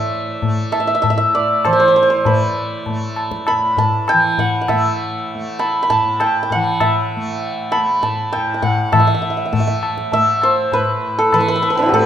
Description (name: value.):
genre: indian classical, Hindustani.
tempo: 99 BPM.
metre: 4/4.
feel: straight.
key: A raga kafi.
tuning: A4 = 440 Hz.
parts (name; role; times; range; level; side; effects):
santur; melody; 0.0-12.1 s; C4 to B5; -16 LUFS; right 1 dB; none.
tanpura; drone; 0.0-12.1 s; A2 to A3; -26 LUFS; right 3 dB; none.
tabla; percussion; 0.4-12.1 s; none; -20 LUFS; left 2 dB; none.
room: moderate recital hall reverb, RT60 1.3 s.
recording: minimal, uncompressed stereo recording.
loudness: -14 LUFS.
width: side -10 dB against mid.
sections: 0.0-8.9 A section; 8.9-12.1 B section.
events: none.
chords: none.